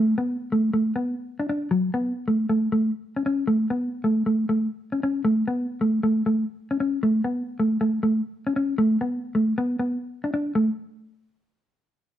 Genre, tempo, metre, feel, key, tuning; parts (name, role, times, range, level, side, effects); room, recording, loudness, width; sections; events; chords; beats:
highlife; 136 BPM; 4/4; swing 54% on 16ths; A major; A4 = 438 Hz
mellow electric guitar; solo; 0.0-10.7 s; F#3 to D4; -22 LUFS; equal
light reverb; band playing live in one room; -22 LUFS; side -11 dB against mid
0.0-3.5 A section; 3.5-10.6 B section; 10.6-12.2 C section
0.40 0.85 1.29 | 1.73 2.17 2.61 3.05 | 3.49 3.94 4.38 4.82 | 5.26 5.70 6.14 6.58 | 7.03 7.47 7.91 8.35 | 8.79 9.23 9.67 10.11 | 10.55